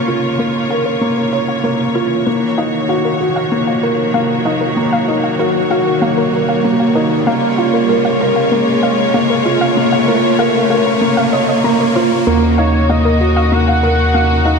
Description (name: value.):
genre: piano and strings electronica.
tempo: 96 BPM.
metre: 4/4.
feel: straight.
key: unclear.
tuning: A4 = 440 Hz.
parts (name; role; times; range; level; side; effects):
rich studio string section; sustained chords; 0.0-14.6 s; Db3 to Db5; -19 LUFS; equal; none.
soft round pluck; arpeggios; 0.0-14.6 s; Bb4 to Bb5; -21 LUFS; left 2 dB; chorus, ping-pong delay.
felt-muted upright piano; riff; 0.0-14.6 s; Bb3 to Db5; -15 LUFS; equal; ping-pong delay.
riser; sound effects; 0.4-12.3 s; none; -21 LUFS; right 1 dB; none.
warm sub bass; bass; 12.3-14.6 s; Eb2; -15 LUFS; equal; none.
warm velvety synth lead; melody; 12.6-14.6 s; Db5 to Gb5; -18 LUFS; right 2 dB; chorus.
room: wet lush hall reverb, RT60 3.1 s.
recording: none.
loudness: -12 LUFS.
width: side -4 dB against mid.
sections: 0.0-12.3 A section; 12.3-14.6 B section.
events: build-up 0.0-12.3; filter sweep on synth arpeggio sound 0.0-12.3; riser 0.4-12.3; drop 12.3-14.6.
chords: 0.0 Bbm; 2.3 Ebm7; 7.3 Bbm; 12.3 Ebm7.